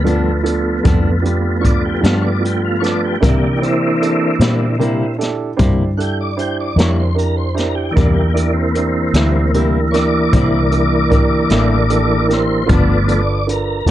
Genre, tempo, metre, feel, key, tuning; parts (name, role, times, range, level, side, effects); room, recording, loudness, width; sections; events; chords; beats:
slow blues; 51 BPM (dotted quarters); 12/8; straight; A4 = 439 Hz
clean electric guitar; accompaniment; 0.0-13.9 s; G2 to E4; -21 LUFS; left 5 dB; harmonic tremolo
warm grand piano; accompaniment; 0.0-13.9 s; B3 to C5; -21 LUFS; right 5 dB; plate reverb
tonewheel organ; sustained chords; 0.0-13.9 s; E3 to G5; -18 LUFS; equal; chorus vibrato, fast rotary speaker
vintage muted fingered electric bass; bass; 0.0-13.9 s; E1 to C3; -18 LUFS; equal
jazz brush drum kit; drums; 0.1-13.9 s; hi-hat, kick drum, snare drum; -18 LUFS; equal
light reverb; dark, warm production, nothing above 10.7 kHz; -13 LUFS; side -13 dB against mid
0.0-13.9 A section
tonewheel organ solo 0.0-13.9
0.0 G7; 3.2 C7; 12.7 G7
0.85 2.04 | 3.22 4.41 5.59 6.78 | 7.96 9.14 10.33 11.51 | 12.70 13.88